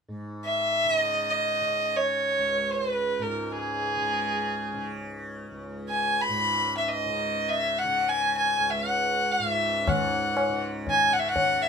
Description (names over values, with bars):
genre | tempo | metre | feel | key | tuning
indian classical, Hindustani | free time | none | none | C# raga bhimpalasi | A4 = 440 Hz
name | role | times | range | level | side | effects
tanpura | drone | 0.1-11.7 s | C#2 to C#3 | -34 LUFS | equal | none
warm violin | melody | 0.5-11.7 s | G#4 to B5 | -24 LUFS | equal | none
tabla | percussion | 9.9-11.5 s | none | -28 LUFS | left 2 dB | none
room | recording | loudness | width
light reverb | minimal, uncompressed stereo recording | -23 LUFS | side -6 dB against mid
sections
0.1-9.9 A section; 9.9-11.7 B section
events
none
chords
none